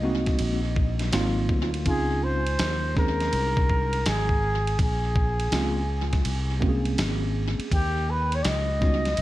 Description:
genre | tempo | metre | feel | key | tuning
hip hop, jazz-hop | 82 BPM | 4/4 | swing 65% on 16ths | Db major | A4 = 441 Hz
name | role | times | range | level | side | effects
breathy flugelhorn | melody | 0.0-9.2 s | G4 to Eb5 | -29 LUFS | equal | tape echo
tine electric piano | accompaniment | 0.0-9.1 s | Gb3 to Ab4 | -29 LUFS | right 1 dB | medium stereo tremolo, tape echo
sustaining fretless electric bass | bass | 0.0-9.2 s | Ab1 to Eb2 | -27 LUFS | equal | wide subtle chorus
dusty soul sampler-style drum kit | drums | 0.3-9.2 s | hi-hat, kick drum, ride cymbal, snare drum | -28 LUFS | equal | tape echo
room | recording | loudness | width
light reverb | echo-heavy mix | -22 LUFS | side -16 dB against mid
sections
0.0-1.9 A section; 1.9-9.2 A section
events
none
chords
0.0 Ab9; 1.1 Ab13; 1.9 Dbmaj9; 4.8 Bbm9; 7.7 Eb7alt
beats
0.40 1.13 | 1.86 2.59 3.33 4.06 | 4.79 5.52 6.25 6.98 | 7.71 8.45 9.18

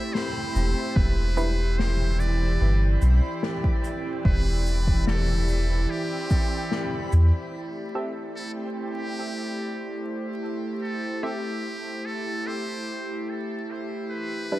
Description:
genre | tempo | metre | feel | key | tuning
ambient dub | 73 BPM | 4/4 | straight | A minor | A4 = 442 Hz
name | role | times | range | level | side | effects
trumpet with metal mute | melody | 0.0-14.6 s | G4 to E5 | -34 LUFS | equal | dub echo
airy breathy pad | sustained chords | 0.0-14.6 s | E3 to D5 | -31 LUFS | equal | chorus
backwards swelling texture | texture | 0.0-7.6 s | C4 to B5 | -37 LUFS | right 1 dB | built-in reverb
snare drum and shaker | drums | 0.1-7.3 s | none | -33 LUFS | left 3 dB | none
soft dub sub bass | bass | 0.6-7.3 s | E1 to E2 | -21 LUFS | equal | none
electronic kick drum | drums | 1.0-6.5 s | none | -23 LUFS | equal | none
filtered dub chord stab | stabs | 1.4-1.5, 7.9-14.6 s | G3 to E5 | -36 LUFS | right 1 dB | chorus, cassette tape, dub echo
room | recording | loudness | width
small room ambience | dark, warm production, vinyl crackle | -23 LUFS | side -16 dB against mid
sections
0.0-7.5 A section; 7.5-14.6 B section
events
none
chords
0.0 Am7; 1.0 Em7; 7.5 Am7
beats
0.14 | 0.96 1.78 2.61 3.43 | 4.25 5.07 5.89 6.71 | 7.54 8.36 9.18 10.00 | 10.82 11.65 12.47 13.29 | 14.11

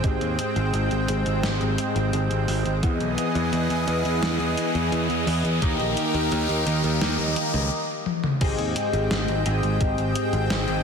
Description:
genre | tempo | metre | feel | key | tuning
synthwave | 86 BPM | 4/4 | straight | Ab major | A4 = 440 Hz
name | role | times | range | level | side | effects
lush unison pad | sustained chords | 0.0-10.8 s | Eb3 to G5 | -28 LUFS | right 1 dB | chorus, sidechain pumping
chorused polysynth | stabs | 0.0-10.8 s | Ab2 to Eb5 | -27 LUFS | left 1 dB | ping-pong delay
modern bright picked electric bass | bass | 0.0-10.8 s | Ab1 to E2 | -26 LUFS | equal | none
electronic kick drum | drums | 0.0-9.9 s | none | -24 LUFS | equal | none
gated 80s digital drum machine | drums | 0.0-10.8 s | crash cymbal, hi-hat, snare drum, toms | -30 LUFS | left 1 dB | gated reverb, gated reverb snare
riser | sound effects | 0.5-7.7 s | none | -32 LUFS | left 2 dB | none
room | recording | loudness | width
moderate lush hall reverb, RT60 2.7 s | dense, heavily limited modern master | -21 LUFS | side -6 dB against mid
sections
0.0-8.4 A section; 8.4-10.8 B section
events
filter sweep on analog polysynth 0.0-8.4; riser 0.5-7.7; stop 7.7-8.4; drum fill 8.1-8.4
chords
0.0 Abmaj7; 2.8 Emaj7; 5.6 Eb; 8.4 Abmaj7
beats
| 0.04 0.74 1.44 2.13 | 2.83 3.53 4.22 4.92 | 5.62 6.32 7.02 7.71 | 8.41 9.11 9.81 10.50

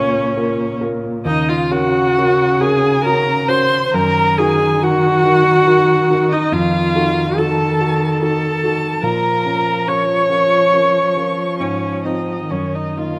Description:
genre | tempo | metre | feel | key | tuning
classical, slow romantic movement for piano quartet | 63-74 BPM | 3/4 | rubato | Bb minor | A4 = 440 Hz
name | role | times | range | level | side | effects
muted violin | melody | 0.0-13.2 s | Db5 to Db6 | -25 LUFS | equal | none
muted cello | second line | 0.0-13.2 s | Bb2 to F3 | -24 LUFS | equal | none
dark grand piano | accompaniment | 0.0-13.2 s | Db2 to Eb5 | -24 LUFS | equal | none
muted viola | accompaniment | 0.0-13.2 s | Db4 to Db5 | -18 LUFS | equal | none
room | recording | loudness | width
moderate recital hall reverb, RT60 1.5 s | close, detailed microphones | -16 LUFS | mono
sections
0.0-13.2 A section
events
none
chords
0.0 Bbm/Db; 1.3 Ebm7; 3.9 Ebm/Gb; 6.5 F7b9; 9.0 Bbm; 11.6 Fm/Ab; 12.5 Ebm/Gb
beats
0.36 | 1.26 2.17 3.05 | 3.94 4.82 5.67 | 6.53 7.37 8.21 | 9.03 9.87 10.72 | 11.60 12.50

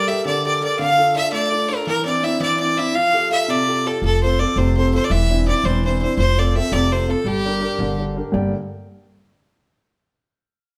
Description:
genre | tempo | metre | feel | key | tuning
celtic folk, Celtic jig | 111 BPM (dotted quarters) | 6/8 | straight | G dorian | A4 = 439 Hz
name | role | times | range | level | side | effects
bright fiddle | melody | 0.0-8.0 s | G4 to F5 | -22 LUFS | equal | none
warm grand piano | accompaniment | 0.0-8.5 s | G2 to G5 | -25 LUFS | equal | none
upright bass | bass | 4.0-8.5 s | E1 to G1 | -23 LUFS | equal | none
room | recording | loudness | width
wet stone room reverb, RT60 1.2 s | band playing live in one room | -19 LUFS | mono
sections
0.0-8.3 A section; 8.3-9.4 B section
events
none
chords
0.0 Gmadd9; 0.8 Dm; 1.9 Cadd9/E; 2.9 Fadd9; 4.0 F; 5.1 Cadd9/E; 6.2 F; 7.2 Gm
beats
0.25 | 0.79 1.32 | 1.86 2.40 | 2.94 3.48 | 4.02 4.56 | 5.10 5.63 | 6.17 6.71 | 7.25 7.79 | 8.33

